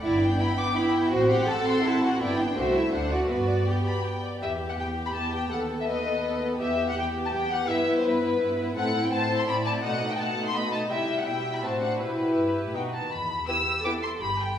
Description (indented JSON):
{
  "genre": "quick classical-period movement for string orchestra",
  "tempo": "165 BPM",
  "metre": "3/4",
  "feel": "straight",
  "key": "G major, E minor from 4.4 s",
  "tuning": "A4 = 440 Hz",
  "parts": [
    { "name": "dark studio violin section", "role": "melody", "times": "0.0-14.6 s", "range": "B4 to E6", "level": "-30 LUFS", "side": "left 3 dB", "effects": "none" },
    { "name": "warm studio violin section", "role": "second line", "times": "0.0-13.9 s", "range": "G4 to D6", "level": "-30 LUFS", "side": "left 2 dB", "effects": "none" },
    { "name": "rich studio viola section", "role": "accompaniment", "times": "0.0-13.9 s", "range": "G3 to A4", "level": "-30 LUFS", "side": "right 1 dB", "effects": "none" },
    { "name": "dark studio cello section", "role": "bass", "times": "0.0-14.6 s", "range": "D#2 to A4", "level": "-30 LUFS", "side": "right 2 dB", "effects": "none" },
    { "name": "dark studio double bass section", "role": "bass", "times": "0.0-3.6, 13.1-14.5 s", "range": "G1 to G2", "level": "-31 LUFS", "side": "right 1 dB", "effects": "none" }
  ],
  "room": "wet recital hall reverb, RT60 1.8 s",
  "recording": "recorded in a church or concert hall",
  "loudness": "-24 LUFS",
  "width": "side -9 dB against mid",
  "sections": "0.0-4.4 A section; 4.4-13.1 B section; 13.1-14.6 C section",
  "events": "none",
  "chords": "0.0 G; 1.1 F#dim/A; 2.2 G; 2.6 Am/C; 2.9 D7; 3.3 G; 4.4 Em; 5.5 B7/D#; 6.6 Em; 7.7 Em/G; 8.8 Amadd11; 9.8 B7; 10.9 C; 11.6 F#dim/A; 12.0 Em/B; 12.7 B; 13.1 Em"
}